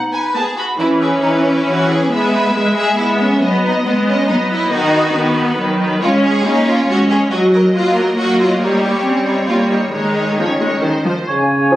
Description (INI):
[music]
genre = cinematic, playful, whimsical film cue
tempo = 138 BPM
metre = 3/4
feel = straight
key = E major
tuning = A4 = 440 Hz
[part]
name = rich studio violin section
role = second line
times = 0.0-10.8 s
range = B3 to F#5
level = -20 LUFS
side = equal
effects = none
[part]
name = warm clarinet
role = second line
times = 0.0-0.3, 11.7-11.8 s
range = D#4 to Ab4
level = -23 LUFS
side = equal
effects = none
[part]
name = rich studio viola section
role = accompaniment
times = 0.0-11.1 s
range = D#3 to Db4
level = -16 LUFS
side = equal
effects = none
[part]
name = rich studio violin section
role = melody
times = 0.1-11.3 s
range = B4 to B5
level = -23 LUFS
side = left 1 dB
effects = none
[part]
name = rich studio cello section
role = bass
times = 0.8-11.0 s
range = Eb3 to D#4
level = -17 LUFS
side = equal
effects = none
[part]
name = mellow flute section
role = second line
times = 11.3-11.8 s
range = Ab5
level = -21 LUFS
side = equal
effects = none
[part]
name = warm oboe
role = second line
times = 11.3-11.8 s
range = Db5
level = -16 LUFS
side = right 2 dB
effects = none
[part]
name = mellow French horn section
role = sustained chords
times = 11.3-11.8 s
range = Db3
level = -16 LUFS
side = equal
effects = none
[part]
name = mellow bassoon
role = accompaniment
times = 11.7-11.8 s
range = F3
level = -11 LUFS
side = equal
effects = none
[sound]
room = wet stone room reverb, RT60 1.3 s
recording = recorded on a phone in the room, studio reverb, compression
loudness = -12 LUFS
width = side -14 dB against mid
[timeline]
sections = 0.8-11.3 A section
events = none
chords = 0.0 B; 0.8 E5; 2.1 E/G#; 3.4 B/F#; 4.7 B/D#; 6.0 Db5/Ab; 7.3 Ebm/Gb; 8.6 Eb13/G; 9.9 Absus4/Eb; 10.8 Cmadd11/Eb